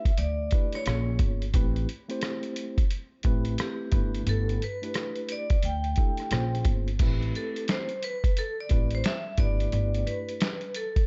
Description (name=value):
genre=hip hop, jazz-hop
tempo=88 BPM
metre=4/4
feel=swing 64% on 16ths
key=unclear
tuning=A4 = 441 Hz
part: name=vibraphone with hard mallets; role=melody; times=0.0-11.1 s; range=G4 to G5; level=-36 LUFS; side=equal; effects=none
part: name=mellow tine electric piano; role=accompaniment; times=0.0-10.5 s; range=A3 to Db5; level=-38 LUFS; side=equal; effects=none
part: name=lo-fi sampler-style drum kit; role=drums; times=0.1-11.1 s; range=crash cymbal, hi-hat, kick drum, rim click, snare drum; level=-29 LUFS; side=equal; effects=none
part: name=upright bass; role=bass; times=0.2-10.0 s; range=G1 to D2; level=-31 LUFS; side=equal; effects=none
room=little or no reverb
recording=nothing above 8.0 kHz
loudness=-28 LUFS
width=mono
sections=0.0-7.0 A section; 7.0-11.1 B section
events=vibraphone solo 7.0-11.1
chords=0.0 G6; 0.9 Bbm7; 1.5 Am7; 3.9 G6; 6.3 Bbm7; 7.0 Am7; 9.4 G6